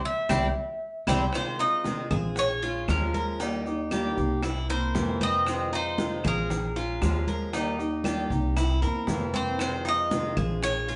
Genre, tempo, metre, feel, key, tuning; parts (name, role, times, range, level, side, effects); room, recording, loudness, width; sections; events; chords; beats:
latin, Cuban son and guajira; 116 BPM; 4/4; straight; F minor; A4 = 436 Hz
Cuban tres; melody; 0.0-11.0 s; Bb4 to E5; -31 LUFS; equal
fingerpicked acoustic archtop guitar; accompaniment; 0.3-11.0 s; C3 to G4; -34 LUFS; equal
Cuban tres; arpeggios; 0.3-11.0 s; C4 to Bb4; -35 LUFS; equal
upright bass; bass; 0.3-11.0 s; Bb1 to F2; -33 LUFS; equal
bongos; percussion; 0.3-10.9 s; -38 LUFS; equal
claves; percussion; 0.3-10.6 s; -42 LUFS; equal
congas; percussion; 0.3-11.0 s; -36 LUFS; equal
maracas; percussion; 0.3-11.0 s; -48 LUFS; equal
wet studio reverb, RT60 0.7 s; band playing live in one room, nothing above 10.3 kHz; -27 LUFS; mono
0.0-1.3 A section; 1.3-11.0 B section
band accent 0.0-1.3; drum fill 0.3-1.3
0.0 C; 1.3 Fm7; 2.4 Bbm7; 3.4 Eb; 4.4 C7; 5.5 Fm7; 6.5 Bbm7; 7.5 Eb; 8.6 C7; 9.6 Fm7
0.29 0.81 | 1.33 1.84 2.36 2.88 | 3.40 3.92 4.43 4.95 | 5.47 5.98 6.50 7.02 | 7.53 8.05 8.57 9.08 | 9.60 10.11 10.63